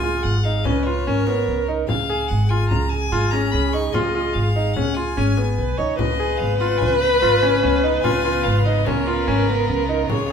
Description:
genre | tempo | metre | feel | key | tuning
contemporary instrumental, chamber music in an uneven meter | 146 BPM | 5/4 | straight | Db mixolydian | A4 = 441 Hz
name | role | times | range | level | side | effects
bright violin | melody | 0.0-10.3 s | Cb5 to Db6 | -27 LUFS | left 6 dB | none
dark viola | second line | 0.0-10.3 s | Ab4 to Db5 | -23 LUFS | equal | none
bright concert grand piano | arpeggios | 0.0-10.3 s | Cb4 to Ab4 | -23 LUFS | equal | none
upright bass | bass | 0.0-10.3 s | Ab1 to Db2 | -22 LUFS | right 1 dB | none
frame drum | percussion | 0.7-10.3 s | none | -29 LUFS | left 1 dB | none
clear symphonic string section | sustained chords | 6.0-10.3 s | Db3 to F4 | -31 LUFS | right 1 dB | none
room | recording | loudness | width
moderate studio reverb, RT60 0.9 s | heard from further back in the room | -17 LUFS | side -7 dB against mid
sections
0.0-10.3 A section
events
none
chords
0.0 Db7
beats
0.24 0.66 1.07 1.48 | 1.89 2.30 2.71 3.12 3.53 | 3.94 4.35 4.76 5.17 5.58 | 6.00 6.41 6.82 7.23 7.64 | 8.05 8.46 8.87 9.28 9.69 | 10.10

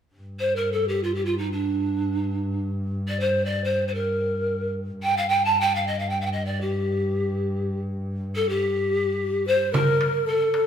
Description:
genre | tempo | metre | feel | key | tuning
Turkish makam ensemble | free time | none | none | G makam nihavent | A4 = 440 Hz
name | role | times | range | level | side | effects
warm double bass | drone | 0.2-9.8 s | G2 | -29 LUFS | equal | none
breathy mellow pan flute | melody | 0.4-10.7 s | D4 to A5 | -23 LUFS | equal | none
breathy ney | second line | 9.5-10.7 s | A4 to C5 | -29 LUFS | left 7 dB | none
darbuka | percussion | 9.7-10.7 s | none | -26 LUFS | left 2 dB | none
frame drum | percussion | 9.7-9.9 s | none | -29 LUFS | right 4 dB | none
room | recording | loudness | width
wet recital hall reverb, RT60 1.4 s | none | -22 LUFS | side -8 dB against mid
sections
0.2-9.7 A section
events
none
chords
none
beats
free time

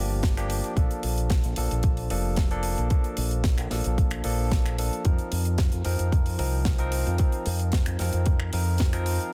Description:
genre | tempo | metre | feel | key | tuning
nu-disco, nu disco | 112 BPM | 4/4 | straight | unclear | A4 = 440 Hz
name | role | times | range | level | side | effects
barky tine electric piano | accompaniment | 0.0-9.3 s | F3 to Bb4 | -34 LUFS | equal | overdrive, analog delay
fingered electric bass with an envelope filter | bass | 0.0-9.2 s | F1 to F2 | -29 LUFS | equal | tube saturation, sidechain pumping
electronic kick drum | drums | 0.2-8.9 s | none | -26 LUFS | equal | small room ambience
tight funk drum kit | drums | 0.2-9.3 s | finger snaps, hi-hat, snare drum | -36 LUFS | equal | small room ambience
room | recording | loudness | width
small room reverb | dense, heavily limited modern master | -25 LUFS | mono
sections
0.0-9.3 A section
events
none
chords
0.0 Gm7; 0.8 Bbmaj7; 5.1 F7sus4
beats
0.23 | 0.77 1.30 1.84 2.37 | 2.91 3.44 3.98 4.51 | 5.05 5.59 6.12 6.66 | 7.19 7.73 8.27 8.80

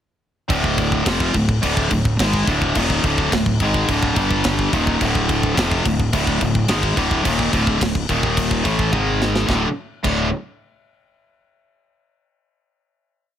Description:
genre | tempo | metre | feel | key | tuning
heavy metal | 107 BPM | 4/4 | straight | D phrygian | A4 = 436 Hz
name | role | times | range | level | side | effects
high-gain distorted guitar | riff | 0.5-10.3 s | D2 to A3 | -18 LUFS | left 1 dB | distortion
fuzz fingered electric bass | bass | 0.5-10.3 s | D1 to A1 | -23 LUFS | equal | overdrive
tight metal drum kit | drums | 0.5-10.2 s | crash cymbal, kick drum, snare drum, toms | -22 LUFS | equal | none
room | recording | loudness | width
little or no reverb | none | -16 LUFS | side -10 dB against mid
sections
0.5-9.5 riff; 9.5-11.7 final chord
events
drum fill 8.9-9.5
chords
0.5 Dm; 4.2 G5; 4.7 Dm; 8.1 Eb5; 8.7 A5; 8.9 G#5; 9.5 D5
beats
| 0.50 1.06 1.63 2.19 | 2.76 3.32 3.88 4.45 | 5.01 5.57 6.13 6.69 | 7.25 7.81 8.37 8.93 | 9.49 10.05

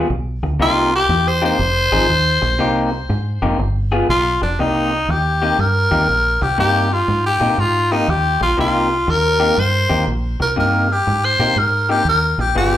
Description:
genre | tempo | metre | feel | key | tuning
electric blues shuffle | 120 BPM | 4/4 | swing 66% on 8ths | C minor | A4 = 440 Hz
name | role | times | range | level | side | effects
electric guitar through a small old amp | riff | 0.0-12.8 s | C3 to Ab4 | -20 LUFS | left 2 dB | slapback echo
deep dub fingered electric bass | bass | 0.0-12.8 s | F1 to Bb2 | -20 LUFS | equal | none
growling tenor saxophone | melody | 0.6-12.8 s | D4 to C5 | -16 LUFS | left 1 dB | plate reverb, slapback echo
room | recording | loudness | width
light reverb | live gig heard through the venue's PA, club ambience | -14 LUFS | side -12 dB against mid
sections
0.0-4.6 A section; 4.6-12.8 B section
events
tenor saxophone solo 0.0-4.6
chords
0.0 G7b9; 0.6 Cm7; 1.6 Fm7; 2.6 Cm7; 3.6 G7b9; 4.6 Cm7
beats
0.10 | 0.59 1.09 1.59 2.09 | 2.59 3.09 3.59 4.08 | 4.58 5.08 5.58 6.08 | 6.58 7.08 7.58 8.08 | 8.58 9.07 9.57 10.07 | 10.57 11.06 11.56 12.06 | 12.55

